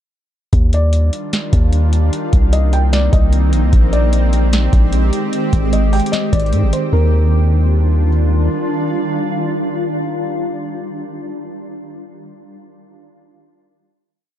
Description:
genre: hip hop, atmospheric cloud-rap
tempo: 150 BPM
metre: 4/4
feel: half-time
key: Eb major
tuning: A4 = 440 Hz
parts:
  - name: shimmering ambient pad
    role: sustained chords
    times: 1.0-10.9 s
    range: Eb3 to G4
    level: -20 LUFS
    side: right 1 dB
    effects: chorus, built-in reverb, sidechain pumping
  - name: long sustained 808-style bass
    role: bass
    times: 0.5-8.5 s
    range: Ab1 to Ab2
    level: -13 LUFS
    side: equal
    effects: none
  - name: booming analog drum machine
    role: drums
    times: 0.5-6.8 s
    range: hi-hat, kick drum, snare drum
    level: -15 LUFS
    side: equal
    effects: vintage 12-bit sampler grit
  - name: felt-muted upright piano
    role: melody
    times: 0.7-8.1 s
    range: Bb4 to G5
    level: -25 LUFS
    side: left 1 dB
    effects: digital delay
room: little or no reverb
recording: dark, warm production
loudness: -13 LUFS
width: side -11 dB against mid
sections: 0.5-6.9 verse; 6.9-10.1 final chord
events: none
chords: 0.5 Ebmaj9; 2.1 Cm7; 3.7 Bb13; 5.3 Abmaj7; 6.9 Ebmaj9

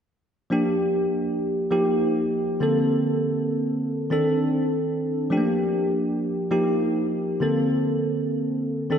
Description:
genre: R&B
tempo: 100 BPM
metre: 4/4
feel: swing 61% on 16ths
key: unclear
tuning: A4 = 440 Hz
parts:
  - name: bell-like tine electric piano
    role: accompaniment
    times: 0.5-9.0 s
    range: D3 to A4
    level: -21 LUFS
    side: equal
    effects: analog chorus
room: wet lush hall reverb, RT60 2.7 s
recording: dreamy mix soaked in reverb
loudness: -21 LUFS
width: side -8 dB against mid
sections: 0.5-9.0 A section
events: none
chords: 0.5 Gm7; 1.7 F9sus4; 2.6 Bbmaj9; 4.1 Cm69; 5.3 Gm7; 6.5 F9sus4; 7.4 Bbmaj9

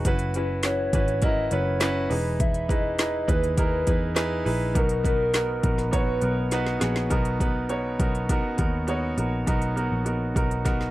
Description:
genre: piano-driven pop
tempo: 102 BPM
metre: 4/4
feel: straight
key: B major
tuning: A4 = 440 Hz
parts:
  - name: clear upright piano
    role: accompaniment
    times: 0.0-10.9 s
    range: B2 to C#5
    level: -27 LUFS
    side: right 1 dB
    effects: none
  - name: vintage muted picked electric bass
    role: bass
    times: 0.0-10.9 s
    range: E1 to E2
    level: -28 LUFS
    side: equal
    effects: none
  - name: deep house drum kit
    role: drums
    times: 0.0-10.9 s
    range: handclaps, hi-hat, kick drum, snare drum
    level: -26 LUFS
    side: equal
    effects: none
  - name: hollow clarinet-like synth lead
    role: melody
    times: 0.1-6.8 s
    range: A#4 to E5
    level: -28 LUFS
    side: equal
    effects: chorus, slapback echo
room: little or no reverb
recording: dry, close 1970s-style studio recording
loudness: -22 LUFS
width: side -16 dB against mid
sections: 0.0-7.1 A section; 7.1-10.9 B section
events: drum fill 6.5-7.1, 10.7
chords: 0.1 F#7sus4; 2.1 Emaj7; 4.8 Bmaj7

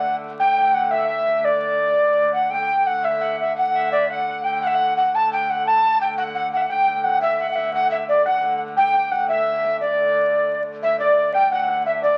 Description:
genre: medieval dance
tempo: 115 BPM (dotted quarters)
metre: 6/8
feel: straight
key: D major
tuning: A4 = 440 Hz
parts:
  - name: mellow tenor recorder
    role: melody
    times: 0.0-12.2 s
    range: D5 to A5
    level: -21 LUFS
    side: equal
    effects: none
  - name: alto recorder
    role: second line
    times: 0.0-12.2 s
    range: D5 to A5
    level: -29 LUFS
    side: equal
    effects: none
  - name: concert harp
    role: second line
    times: 0.0-3.3, 6.7-12.2 s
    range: D5 to G5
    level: -29 LUFS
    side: equal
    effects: none
  - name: warm hurdy-gurdy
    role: drone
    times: 0.0-12.2 s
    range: D3 to A3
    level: -37 LUFS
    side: equal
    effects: none
room: wet studio reverb, RT60 0.7 s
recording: very old 78 rpm record, vinyl crackle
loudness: -20 LUFS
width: mono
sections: 0.0-2.5 A section; 2.5-10.8 A section; 10.8-12.2 B section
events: speeding up 0.0-12.2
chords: none

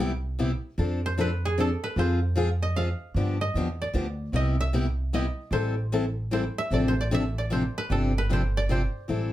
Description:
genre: acoustic string swing (jazz manouche)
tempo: 152 BPM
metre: 3/4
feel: swing 62% on 8ths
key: unclear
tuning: A4 = 440 Hz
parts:
  - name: koto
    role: melody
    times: 0.0-9.3 s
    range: E4 to F5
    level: -32 LUFS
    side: right 2 dB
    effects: none
  - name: picked steel-string acoustic guitar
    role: accompaniment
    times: 0.0-9.3 s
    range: C3 to A4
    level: -27 LUFS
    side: left 2 dB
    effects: none
  - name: upright bass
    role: bass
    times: 0.0-9.3 s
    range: G1 to G2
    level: -27 LUFS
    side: right 1 dB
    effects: none
room: moderate studio ambience, RT60 0.5 s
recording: heard from further back in the room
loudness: -24 LUFS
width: side -14 dB against mid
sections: 0.0-9.1 A section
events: koto solo 0.0-9.1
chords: 0.0 Cmaj7; 0.8 F6; 2.0 Fm; 3.2 G7; 4.3 Cmaj7; 5.5 Am7; 6.7 Dm7/A; 7.9 G7sus4

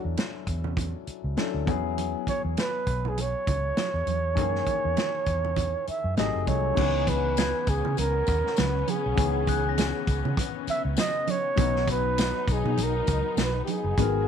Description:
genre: lush 1970s-style soul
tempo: 100 BPM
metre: 4/4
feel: swing 58% on 16ths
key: C# dorian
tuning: A4 = 440 Hz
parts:
  - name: breathy flugelhorn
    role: melody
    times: 0.0-14.3 s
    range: G4 to E5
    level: -28 LUFS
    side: right 4 dB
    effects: none
  - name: warm baby grand piano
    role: accompaniment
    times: 0.0-14.3 s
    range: B#2 to A#4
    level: -32 LUFS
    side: left 15 dB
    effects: none
  - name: vintage muted fingered electric bass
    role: bass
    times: 0.0-14.3 s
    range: F#1 to C#3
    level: -29 LUFS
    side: equal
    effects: none
  - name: vintage drum kit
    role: drums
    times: 0.2-14.1 s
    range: crash cymbal, hi-hat, kick drum, snare drum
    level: -29 LUFS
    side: equal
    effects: none
  - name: congas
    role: percussion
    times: 0.2-14.1 s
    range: none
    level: -34 LUFS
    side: right 16 dB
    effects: none
  - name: warm studio string section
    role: sustained chords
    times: 6.8-14.3 s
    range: C#3 to F#4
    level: -34 LUFS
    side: left 16 dB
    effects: none
  - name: tambourine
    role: percussion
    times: 6.8-13.8 s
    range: none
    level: -42 LUFS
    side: left 19 dB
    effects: none
  - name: glockenspiel with hard plastic mallets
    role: texture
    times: 7.4-11.3 s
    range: F#6 to A#6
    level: -39 LUFS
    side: left 16 dB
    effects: none
room: light reverb, small room ambience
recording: 1960s-style stereo with parts hard left and right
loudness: -24 LUFS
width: side -8 dB against mid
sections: 0.0-6.8 A section; 6.8-14.3 B section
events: none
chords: 0.0 Dmaj9; 1.7 E69; 4.4 F#13; 6.2 G#7b9; 6.8 C#m7; 11.6 Bmaj7

